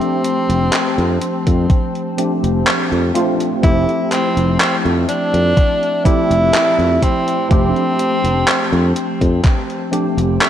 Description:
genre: vaporwave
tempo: 62 BPM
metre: 4/4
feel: straight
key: unclear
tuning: A4 = 440 Hz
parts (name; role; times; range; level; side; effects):
- bright tenor saxophone; melody; 0.0-10.5 s; A3 to E4; -19 LUFS; equal; vintage 12-bit sampler grit, tape echo
- tine electric piano; accompaniment; 0.0-10.5 s; F3 to G4; -19 LUFS; equal; medium stereo tremolo, ensemble chorus, analog delay
- warbly tape-like pad; sustained chords; 0.1-10.5 s; F3 to A5; -27 LUFS; left 1 dB; chorus, built-in reverb, vintage 12-bit sampler grit
- gated 80s digital drum machine; drums; 0.0-10.5 s; handclaps, hi-hat; -20 LUFS; equal; gated reverb
- sustaining fretless electric bass; bass; 0.5-10.4 s; F1 to F2; -17 LUFS; equal; tube saturation
- electronic kick drum; drums; 1.5-9.6 s; none; -14 LUFS; equal; none
room: moderate lush hall reverb, RT60 2.7 s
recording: cassette tape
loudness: -13 LUFS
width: side -10 dB against mid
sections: 0.0-10.5 A section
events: none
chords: 0.0 G9sus4/F; 3.6 Fmaj9; 7.5 G9sus4/F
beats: 0.73 1.70 2.67 | 3.63 4.60 5.57 6.54 | 7.50 8.47 9.44 10.41

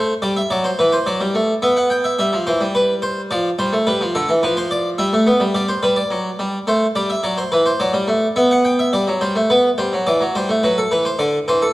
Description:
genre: classical, baroque-style two-part invention for harpsichord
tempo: 107 BPM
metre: 3/4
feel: straight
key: unclear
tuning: A4 = 440 Hz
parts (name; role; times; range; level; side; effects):
- harpsichord; solo; 0.0-11.7 s; D3 to G5; -15 LUFS; equal; none
room: moderate recital hall reverb, RT60 1.5 s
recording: none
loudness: -15 LUFS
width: side -18 dB against mid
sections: 0.0-8.9 A section; 8.9-11.7 B section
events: none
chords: 0.0 Am; 0.5 D7; 1.6 G/B; 2.2 C; 3.3 Dm/F; 3.9 G7 (rootless); 5.0 G69; 5.5 G; 6.7 Am; 7.2 D7; 8.4 G/B; 8.9 G; 10.1 C/E; 10.6 F#m7b5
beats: | 0.51 1.07 1.63 | 2.19 2.75 3.30 | 3.86 4.42 4.99 | 5.55 6.11 6.67 | 7.24 7.80 8.37 | 8.94 9.51 10.07 | 10.64 11.20

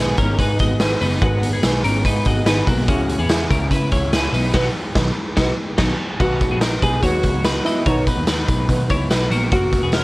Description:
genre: jangly indie pop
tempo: 145 BPM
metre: 4/4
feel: straight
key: B major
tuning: A4 = 440 Hz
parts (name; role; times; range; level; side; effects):
- fingerpicked steel-string acoustic guitar; accompaniment; 0.0-10.0 s; G#2 to B4; -24 LUFS; right 2 dB; none
- twelve-string electric guitar; arpeggios; 0.0-10.0 s; F#3 to D#5; -24 LUFS; left 2 dB; analog chorus, plate reverb
- vintage muted picked electric bass; bass; 0.0-10.0 s; E1 to C#3; -22 LUFS; equal; tube saturation
- raw garage drum kit; drums; 0.2-10.0 s; crash cymbal, hi-hat, kick drum, snare drum; -20 LUFS; equal; none
- tambourine; percussion; 0.2-10.0 s; none; -37 LUFS; right 2 dB; none
- nylon-string guitar; melody; 6.2-10.0 s; D#4 to G#4; -22 LUFS; equal; none
room: light reverb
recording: worn, warbling old tape, cassette tape, warbly pitch drift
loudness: -16 LUFS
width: side -21 dB against mid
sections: 0.0-6.2 A section; 6.2-10.0 B section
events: band accent 4.5-6.2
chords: 0.0 G#m; 2.9 C#m; 4.3 B; 9.5 F#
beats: 0.39 0.81 | 1.22 1.64 2.05 2.47 | 2.88 3.30 3.71 4.13 | 4.54 4.96 5.37 5.79 | 6.20 6.62 7.03 7.45 | 7.86 8.28 8.69 9.11 | 9.52 9.94

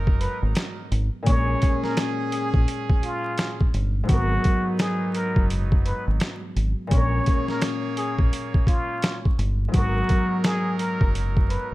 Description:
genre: hip hop, boom-bap hip-hop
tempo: 85 BPM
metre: 4/4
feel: swing 61% on 16ths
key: G# minor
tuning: A4 = 439 Hz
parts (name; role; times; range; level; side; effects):
- concert harp; accompaniment; 0.0-11.7 s; G#2 to A#4; -28 LUFS; left 2 dB; cassette tape, high-pass filter, low-pass filter
- clear trumpet section; stabs; 0.0-11.7 s; F#3 to C#5; -34 LUFS; right 6 dB; high-pass filter, low-pass filter, slapback echo
- deep dub fingered electric bass; bass; 0.0-11.7 s; F#1 to A#1; -24 LUFS; equal; none
- boom bap sampler-style drum kit; drums; 0.1-11.7 s; hi-hat, kick drum, snare drum; -22 LUFS; equal; none
- trumpet with plunger mute; melody; 0.2-11.7 s; E#4 to C#5; -29 LUFS; equal; high-pass filter, low-pass filter, slapback echo
room: studio reverb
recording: dark, warm production, vinyl crackle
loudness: -20 LUFS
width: side -18 dB against mid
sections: 0.0-11.7 A section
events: none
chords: 0.0 G#m9; 1.3 A#m7; 4.1 G#m9; 6.9 A#m7; 9.7 G#m9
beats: 0.56 | 1.27 1.97 2.68 3.38 | 4.09 4.80 5.50 6.21 | 6.91 7.62 8.33 9.03 | 9.74 10.44 11.15

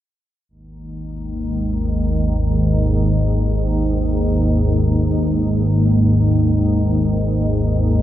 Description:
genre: ambient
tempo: free time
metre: none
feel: none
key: unclear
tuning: A4 = 440 Hz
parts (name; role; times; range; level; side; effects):
- organ-like drone; solo; 0.9-8.0 s; G#1 to D#2; -15 LUFS; equal; ensemble chorus, built-in reverb
room: wet huge ambient reverb, RT60 7.8 s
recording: in a vast, echoing space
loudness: -15 LUFS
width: side -12 dB against mid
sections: 0.5-8.0 A section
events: none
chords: 0.5 G#5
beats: free time

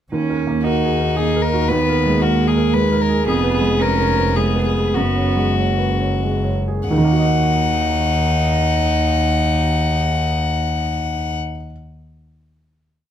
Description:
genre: neoclassical piano and strings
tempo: 86-116 BPM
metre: 3/4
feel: rubato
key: Eb minor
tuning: A4 = 440 Hz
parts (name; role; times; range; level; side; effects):
- rich cello; second line; 0.1-11.4 s; Ab3 to Eb4; -24 LUFS; right 4 dB; none
- felt-muted upright piano; accompaniment; 0.1-11.7 s; Eb2 to Gb5; -21 LUFS; right 3 dB; none
- dark double bass; bass; 0.1-11.4 s; F1 to Eb2; -21 LUFS; equal; none
- rich violin; melody; 0.6-11.3 s; Gb4 to Gb5; -21 LUFS; left 6 dB; none
room: light reverb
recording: none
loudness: -15 LUFS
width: side -10 dB against mid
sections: 0.1-6.9 theme; 6.9-11.1 final chord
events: slowing down 2.5-6.9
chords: 0.1 Ebm; 1.7 Abmadd9/Eb; 3.3 Fdim; 4.9 Gbadd9; 6.9 Ebm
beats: | 0.12 0.65 1.17 | 1.70 2.23 2.74 | 3.27 3.80 4.36 | 4.95 5.56 6.21 | 6.90 7.60 8.29 | 8.99 9.68 10.38

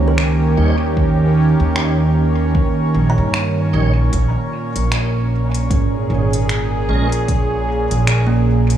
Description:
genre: ambient dub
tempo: 76 BPM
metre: 4/4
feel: swing 59% on 16ths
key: Bb dorian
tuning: A4 = 440 Hz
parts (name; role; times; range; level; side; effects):
- warm analog pad; sustained chords; 0.0-8.8 s; Bb2 to Bb4; -19 LUFS; right 2 dB; chorus
- kalimba; arpeggios; 0.0-8.8 s; Bb3 to Bb5; -28 LUFS; right 4 dB; none
- upright bass; bass; 0.0-8.8 s; Ab1 to G2; -17 LUFS; equal; none
- bubbling stepped-filter texture; texture; 0.0-8.8 s; Db4 to Db5; -25 LUFS; right 4 dB; chorus, built-in reverb
- organic electronic drum kit; drums; 0.2-8.8 s; finger snaps, hi-hat; -25 LUFS; equal; dub echo
- tonewheel organ; stabs; 0.6-7.1 s; G3 to Db5; -29 LUFS; right 1 dB; overdrive, chorus vibrato, slow rotary speaker, dub echo
- electronic kick drum; drums; 1.0-7.5 s; none; -18 LUFS; equal; none
room: light reverb, digital ambience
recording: studio reverb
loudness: -14 LUFS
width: side -10 dB against mid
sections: 0.0-8.8 A section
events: none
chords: 0.0 Eb7; 4.1 Bbm7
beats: 0.18 | 0.97 1.76 2.55 3.34 | 4.13 4.92 5.71 6.50 | 7.29 8.07

